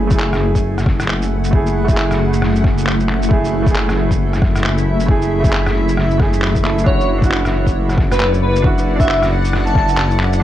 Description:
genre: future garage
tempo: 135 BPM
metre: 4/4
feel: swing 60% on 16ths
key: F# minor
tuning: A4 = 439 Hz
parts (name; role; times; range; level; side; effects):
- warm upright piano; accompaniment; 0.0-10.4 s; A3 to A4; -22 LUFS; right 3 dB; sidechain pumping, tape echo
- granular cloud pad; sustained chords; 0.0-10.4 s; A3 to F#5; -22 LUFS; equal; built-in reverb, sidechain pumping
- dark detuned saw bass; bass; 0.0-10.4 s; F#1; -18 LUFS; equal; sidechain pumping
- electronic kick drum; drums; 0.1-9.9 s; none; -17 LUFS; equal; overdrive, vintage 12-bit sampler grit
- electronic shaker, handclaps and rim click; drums; 0.1-10.4 s; none; -22 LUFS; equal; vintage 12-bit sampler grit
- airy dreamy lead; melody; 6.9-10.1 s; B4 to A5; -20 LUFS; equal; chorus, cassette tape, tape echo
room: light reverb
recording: cassette tape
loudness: -13 LUFS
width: side -12 dB against mid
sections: 0.0-10.4 A section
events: none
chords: 0.0 F#m7; 6.9 Dadd9/F#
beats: 0.20 0.64 1.09 | 1.53 1.97 2.42 2.86 | 3.31 3.75 4.20 4.64 | 5.09 5.53 5.97 6.42 | 6.86 7.31 7.75 8.20 | 8.64 9.09 9.53 9.97 | 10.42

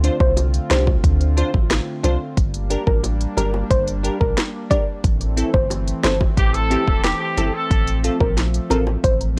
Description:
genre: dancehall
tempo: 90 BPM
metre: 4/4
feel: straight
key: D minor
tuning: A4 = 440 Hz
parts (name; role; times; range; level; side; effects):
- wavetable chord stab; accompaniment; 0.0-9.4 s; C4 to C5; -26 LUFS; equal; none
- warm analog pad; sustained chords; 0.0-9.4 s; D3 to F4; -32 LUFS; equal; chorus, sidechain pumping
- punchy sub bass; bass; 0.0-9.4 s; E1 to D2; -23 LUFS; equal; none
- afro-pop drum kit; drums; 0.0-9.4 s; hi-hat, kick drum, rim click, snare drum; -22 LUFS; equal; overdrive
- soft round pluck; melody; 0.2-9.2 s; Bb4 to D5; -25 LUFS; equal; chorus
- bongos; percussion; 0.2-9.0 s; none; -33 LUFS; equal; none
- warm horn section; second line; 6.4-8.0 s; G4 to A4; -26 LUFS; equal; tape echo
room: little or no reverb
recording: dry, gritty hardware recording, cassette tape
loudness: -19 LUFS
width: mono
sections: 0.0-9.4 A section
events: none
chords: 0.0 Dm7; 2.4 Gm; 5.0 Am; 7.7 F/A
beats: 0.37 1.04 1.71 | 2.37 3.04 3.71 4.37 | 5.04 5.71 6.37 7.04 | 7.71 8.37 9.04

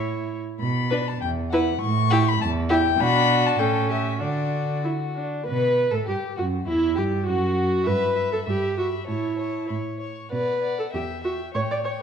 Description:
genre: quick classical-period movement for string quartet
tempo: 98 BPM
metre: 2/4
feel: rubato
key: unclear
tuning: A4 = 439 Hz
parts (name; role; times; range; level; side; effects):
- rich violin; second line; 0.0-12.0 s; E4 to E5; -30 LUFS; left 3 dB; none
- warm viola; accompaniment; 0.0-11.9 s; C#4 to D5; -25 LUFS; right 1 dB; none
- dark cello; bass; 0.0-12.0 s; E2 to D3; -27 LUFS; right 3 dB; none
- dark violin; melody; 0.6-12.0 s; E4 to C#6; -28 LUFS; left 10 dB; none
room: moderate recital hall reverb, RT60 1.4 s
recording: dark, warm production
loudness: -21 LUFS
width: side -7 dB against mid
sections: 0.0-5.5 A section; 5.5-12.0 A section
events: none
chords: 0.0 A; 0.6 Bm; 1.2 E5; 1.8 A5; 3.0 Bm; 3.6 A7; 4.2 D; 5.5 Asus2; 6.1 N.C.; 6.7 Em; 7.3 N.C.; 7.9 Em/G; 9.1 A; 10.3 Bm; 10.9 Em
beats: | 0.60 1.21 | 1.81 2.41 | 3.00 3.60 | 4.22 4.84 | 5.46 6.08 | 6.68 7.27 | 7.87 8.47 | 9.08 9.70 | 10.32 10.94 | 11.55

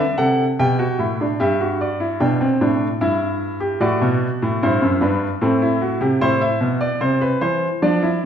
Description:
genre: classical, baroque-style 3-part fugue for grand piano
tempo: 75 BPM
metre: 3/4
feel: straight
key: G major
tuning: A4 = 445 Hz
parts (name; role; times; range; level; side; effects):
- clear baby grand piano; solo; 0.0-8.3 s; F#2 to G5; -17 LUFS; equal; none
room: wet recital hall reverb, RT60 1.3 s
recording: heard from further back in the room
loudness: -17 LUFS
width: side -8 dB against mid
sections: 0.0-1.4 A section; 1.4-8.3 B section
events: none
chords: 0.0 D7 (rootless); 0.6 G/B; 1.4 G; 3.0 Em/G; 3.8 Am; 5.4 F#dim/A; 6.2 Am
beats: 0.58 | 1.40 2.21 3.02 | 3.82 4.62 5.42 | 6.21 7.01 7.82

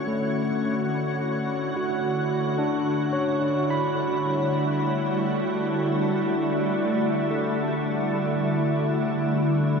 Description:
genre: ambient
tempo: free time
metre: none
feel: none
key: unclear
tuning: A4 = 440 Hz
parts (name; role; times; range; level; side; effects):
- soft additive organ-like pad; sustained chords; 0.0-9.8 s; D3 to C#5; -24 LUFS; equal; ensemble chorus, built-in reverb, shimmer reverb
- barky tine electric piano; arpeggios; 0.0-9.8 s; A3 to B5; -28 LUFS; left 1 dB; auto-pan, ping-pong delay, shimmer reverb
room: wet huge ambient reverb, RT60 7.5 s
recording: none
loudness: -22 LUFS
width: side -5 dB against mid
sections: 0.0-9.8 A section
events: none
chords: 0.0 Dmaj9; 2.9 Em11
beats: free time

